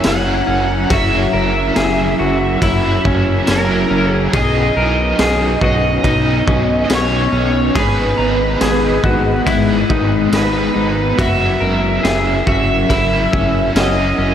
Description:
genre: dream pop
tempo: 70 BPM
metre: 4/4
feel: straight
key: unclear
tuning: A4 = 440 Hz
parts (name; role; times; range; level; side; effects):
- overdriven slide guitar; melody; 0.0-14.3 s; A#4 to F#5; -19 LUFS; equal; analog chorus, analog delay
- overdriven electric guitar; accompaniment; 0.0-14.3 s; G#2 to B4; -23 LUFS; right 3 dB; tremolo, ensemble chorus
- ethereal airy pad; sustained chords; 0.0-14.3 s; F#3 to A#5; -21 LUFS; left 1 dB; ensemble chorus, built-in reverb
- clean electric guitar; arpeggios; 0.0-14.3 s; C#4 to A#5; -20 LUFS; left 3 dB; lush chorus, analog delay
- raw garage drum kit; drums; 0.0-14.0 s; kick drum, ride cymbal, snare drum, tambourine; -20 LUFS; equal; none
- celesta; texture; 0.0-14.3 s; F#4 to D#6; -30 LUFS; left 2 dB; none
- fat analog bass; bass; 0.1-14.3 s; F#1 to B1; -19 LUFS; equal; none
room: moderate lush hall reverb, RT60 2.9 s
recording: dreamy mix soaked in reverb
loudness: -12 LUFS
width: side -9 dB against mid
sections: 0.0-14.3 A section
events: none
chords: 0.0 F#7; 4.3 Badd9; 7.8 G#m; 11.2 F#7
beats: 0.04 | 0.90 1.76 2.62 3.47 | 4.33 5.19 6.04 6.90 | 7.76 8.62 9.47 10.33 | 11.19 12.04 12.90 13.76

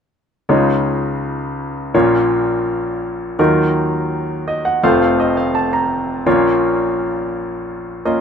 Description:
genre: folk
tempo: 83 BPM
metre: 4/4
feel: straight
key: Db major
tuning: A4 = 439 Hz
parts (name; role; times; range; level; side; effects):
- bright grand piano; accompaniment; 0.5-8.2 s; F1 to Bb5; -15 LUFS; equal; none
room: moderate studio reverb, RT60 0.8 s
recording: minimal, uncompressed stereo recording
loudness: -15 LUFS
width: side -7 dB against mid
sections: 0.5-8.2 A section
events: none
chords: 0.5 Dbadd9; 1.9 Bbm; 3.4 Ebmadd9; 4.8 F; 6.3 Bbm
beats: | 0.49 1.22 1.94 2.67 | 3.39 4.11 4.83 5.55 | 6.26 6.98 7.70

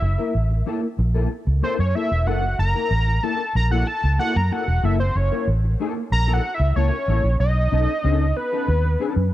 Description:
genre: funk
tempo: 94 BPM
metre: 4/4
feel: straight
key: F# mixolydian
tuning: A4 = 438 Hz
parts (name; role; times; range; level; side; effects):
- fat analog lead; melody; 0.0-9.3 s; B4 to A#5; -25 LUFS; equal; chorus
- mellow electric guitar; accompaniment; 0.0-9.2 s; A#3 to A#4; -27 LUFS; left 4 dB; ensemble chorus
- vintage muted fingered electric bass; bass; 0.0-9.3 s; E1 to F#2; -19 LUFS; equal; none
room: light reverb, digital ambience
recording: dark, warm production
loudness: -18 LUFS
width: side -14 dB against mid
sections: 0.0-7.4 A section; 7.4-9.3 B section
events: analog synth lead solo 0.0-7.4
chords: 0.0 F#7#9; 7.4 B9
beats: 0.34 0.99 1.63 | 2.27 2.91 3.55 4.20 | 4.84 5.48 6.12 6.76 | 7.40 8.04 8.68 9.32

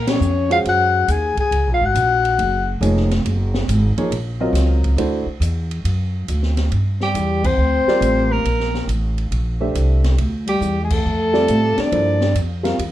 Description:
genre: modal jazz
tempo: 138 BPM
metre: 4/4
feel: swing 67% on 8ths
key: G dorian from 6.7 s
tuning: A4 = 439 Hz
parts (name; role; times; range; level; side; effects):
- warm soprano saxophone; melody; 0.0-2.7, 7.0-12.4 s; G4 to Ab5; -19 LUFS; left 2 dB; plate reverb
- breathy trombone; second line; 0.0-2.7, 7.0-12.4 s; G3 to Ab4; -23 LUFS; left 4 dB; none
- upright bass; bass; 0.0-12.9 s; F1 to Bb2; -19 LUFS; equal; none
- open jazz drum kit; drums; 0.1-12.9 s; crash cymbal, hi-hat, kick drum, ride cymbal, snare drum; -28 LUFS; right 1 dB; none
- warm baby grand piano; accompaniment; 0.5-5.2, 7.9-12.8 s; F3 to Gb5; -22 LUFS; right 1 dB; none
room: light reverb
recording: dark, warm production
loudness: -16 LUFS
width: side -13 dB against mid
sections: 0.0-6.7 A section; 6.7-12.9 B section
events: band accent 0.0, 7.4, 10.8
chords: 0.0 Gbadd9; 5.0 D7; 6.7 Gm9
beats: 0.21 0.65 1.08 | 1.52 1.95 2.38 2.82 | 3.25 3.69 4.12 4.55 | 4.99 5.42 5.85 6.29 | 6.72 7.15 7.58 8.02 | 8.45 8.89 9.32 9.75 | 10.19 10.62 11.06 11.49 | 11.92 12.36 12.79

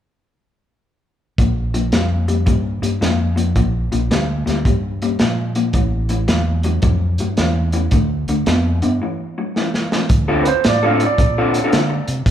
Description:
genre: electric blues shuffle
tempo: 110 BPM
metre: 4/4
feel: swing 65% on 8ths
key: D minor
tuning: A4 = 440 Hz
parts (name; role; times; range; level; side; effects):
- electric guitar through a small old amp; riff; 1.4-11.9 s; A2 to A4; -20 LUFS; left 2 dB; spring reverb
- fingered electric bass; bass; 1.4-12.3 s; A1 to D3; -20 LUFS; equal; none
- crunchy breakbeat drum kit; drums; 1.4-12.3 s; hi-hat, kick drum, snare drum; -19 LUFS; equal; none
- clear upright piano; second line; 10.4-12.1 s; B4 to F5; -20 LUFS; right 6 dB; none
room: moderate large studio reverb, RT60 1.1 s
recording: band playing live in one room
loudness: -15 LUFS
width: side -10 dB against mid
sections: 1.4-10.1 A section; 10.1-12.3 B section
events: break 9.0-10.1; drum fill 9.5-10.1; upright piano solo 10.1-12.3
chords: 1.4 Bb5; 5.7 A5; 7.9 Dm; 9.0 A5; 10.1 Dm7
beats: | 1.39 1.93 2.48 3.02 | 3.56 4.11 4.65 5.20 | 5.74 6.29 6.83 7.37 | 7.92 8.46 9.00 9.55 | 10.09 10.63 11.17 11.72 | 12.26

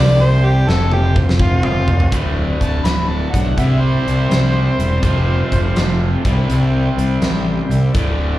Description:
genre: blues rock power trio and southern rock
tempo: 82 BPM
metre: 4/4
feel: swing 67% on 8ths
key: unclear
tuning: A4 = 442 Hz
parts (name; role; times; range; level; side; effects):
- overdriven harmonica; melody; 0.0-6.0 s; F4 to B5; -22 LUFS; equal; slapback echo
- overdriven tonewheel organ; sustained chords; 0.0-8.4 s; F3 to D5; -30 LUFS; right 2 dB; none
- fuzz picked electric bass; bass; 0.0-8.3 s; D1 to C2; -16 LUFS; equal; overdrive
- huge arena drum kit; drums; 0.7-8.2 s; hi-hat, kick drum, snare drum, toms; -20 LUFS; equal; none
- crunchy overdriven guitar; riff; 2.1-8.4 s; D2 to C4; -22 LUFS; left 1 dB; slapback echo
- dark smooth lead guitar; second line; 2.6-6.0 s; G3 to F#4; -30 LUFS; right 2 dB; none
room: little or no reverb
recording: live gig heard through the venue's PA, club reverb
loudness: -13 LUFS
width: side -15 dB against mid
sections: 0.0-2.1 A section; 2.1-8.4 B section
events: harmonica solo 0.0-2.1; drum fill 0.7-2.1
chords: 0.0 C5; 0.7 F5; 2.1 D; 3.6 C; 5.0 F; 6.1 C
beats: 0.68 1.40 | 2.13 2.85 3.58 4.31 | 5.03 5.76 6.49 7.22 | 7.95

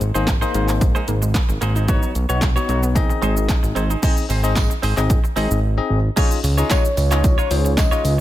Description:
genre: dance-pop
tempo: 112 BPM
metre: 4/4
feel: straight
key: unclear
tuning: A4 = 445 Hz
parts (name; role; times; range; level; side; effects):
- direct-recorded clean electric guitar; riff; 0.0-8.2 s; Ab3 to Db5; -28 LUFS; right 4 dB; wide subtle chorus
- fat analog bass; bass; 0.0-8.2 s; Ab1 to Db2; -19 LUFS; equal; sidechain pumping
- punchy analog drum machine; drums; 0.0-8.2 s; crash cymbal, handclaps, hi-hat, kick drum, shaker, snare drum; -19 LUFS; equal; none
- bell-like tine electric piano; accompaniment; 0.1-8.1 s; Bb3 to Eb5; -25 LUFS; left 6 dB; sidechain pumping
- wide unison pluck; arpeggios; 0.3-4.0 s; Eb3 to Eb4; -32 LUFS; right 3 dB; none
- tambourine; percussion; 4.0-8.2 s; none; -37 LUFS; right 11 dB; none
- soft octave-layered synth lead; melody; 6.7-8.2 s; Db5 to Eb5; -23 LUFS; left 1 dB; chorus
room: little or no reverb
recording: none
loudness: -16 LUFS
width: side -14 dB against mid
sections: 0.0-4.0 A section; 4.0-6.2 B section; 6.2-8.2 C section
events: silent gap 5.6-6.2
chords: 0.0 Abadd9; 1.9 Cbadd9; 3.0 Ab; 6.2 Dbadd9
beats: 0.28 0.81 1.35 | 1.89 2.42 2.96 3.49 | 4.03 4.56 5.10 5.64 | 6.17 6.71 7.24 7.78

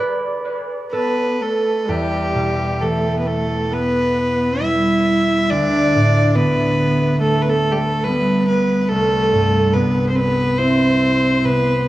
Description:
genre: celtic folk, Celtic slow air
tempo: 64-72 BPM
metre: 4/4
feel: rubato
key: E minor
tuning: A4 = 439 Hz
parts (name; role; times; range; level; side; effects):
- concert harp; accompaniment; 0.0-11.9 s; C2 to D5; -19 LUFS; right 1 dB; dub echo
- rich fiddle; melody; 0.9-11.9 s; G4 to E5; -19 LUFS; equal; dub echo
- dark viola; second line; 0.9-11.9 s; G3 to E4; -21 LUFS; equal; none
room: light reverb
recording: echo-heavy mix, cassette tape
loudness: -15 LUFS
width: side -15 dB against mid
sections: 0.0-1.9 A section; 1.9-11.9 B section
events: harp solo 0.0-1.9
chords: 0.0 N.C.; 1.9 Em; 5.5 Dsus4; 8.9 Am7/C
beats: 0.01 0.93 | 1.86 2.78 3.69 4.58 | 5.47 6.33 7.18 8.04 | 8.88 9.73 10.59 11.45

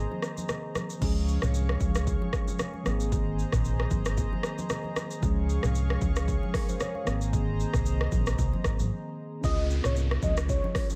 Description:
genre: afrobeats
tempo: 114 BPM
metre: 4/4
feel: swing 55% on 16ths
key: unclear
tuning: A4 = 440 Hz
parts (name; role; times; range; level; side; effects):
- tine electric piano; accompaniment; 0.0-11.0 s; Eb3 to F5; -38 LUFS; equal; medium tremolo
- warm analog pad; sustained chords; 0.0-9.4 s; Ab4 to Db6; -42 LUFS; equal; chorus
- fingered electric bass; bass; 0.0-10.6 s; Ab1 to Db2; -30 LUFS; equal; none
- congas; percussion; 0.1-11.0 s; none; -40 LUFS; equal; none
- afro-pop drum kit; drums; 0.2-11.0 s; crash cymbal, hi-hat, kick drum, rim click, shaker, toms; -32 LUFS; equal; overdrive
- warm velvety synth lead; melody; 9.4-10.9 s; Db5 to Eb5; -36 LUFS; equal; chorus, delay
- downlifter; sound effects; 9.4-11.0 s; none; -43 LUFS; equal; none
room: digital ambience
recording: none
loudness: -28 LUFS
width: mono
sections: 0.0-1.0 A section; 1.0-9.4 B section; 9.4-11.0 C section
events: break 0.0-1.0, 8.9-9.4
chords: 0.0 Abadd9; 1.0 Db; 2.9 Abadd9; 5.2 Db; 7.1 Abadd9; 9.4 Db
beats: 0.49 | 1.02 1.54 2.07 2.60 | 3.12 3.65 4.17 4.70 | 5.23 5.75 6.28 6.81 | 7.33 7.86 8.38 8.91 | 9.44 9.96 10.49

